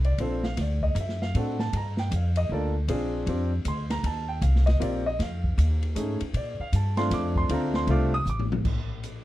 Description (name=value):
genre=jazz, small-group swing and bop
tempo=156 BPM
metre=3/4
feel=swing 64% on 8ths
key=Bb major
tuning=A4 = 440 Hz
part: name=upright bass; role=bass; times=0.0-9.2 s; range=A1 to Bb2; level=-26 LUFS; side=equal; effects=none
part: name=open jazz drum kit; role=drums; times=0.0-9.1 s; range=crash cymbal, hi-hat, kick drum, ride cymbal, snare drum, toms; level=-33 LUFS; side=left 1 dB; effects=none
part: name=warm grand piano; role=accompaniment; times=0.1-8.4 s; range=A3 to Eb6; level=-29 LUFS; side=equal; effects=none
room=little or no reverb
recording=dark, warm production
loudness=-24 LUFS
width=side -15 dB against mid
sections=0.0-8.6 A section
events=drum fill 8.3-8.6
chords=0.0 Bbmaj9; 0.6 D7; 1.7 Gm7; 2.9 Bb9; 4.0 Eb69; 5.2 F7alt; 6.3 Bbmaj9; 8.6 N.C.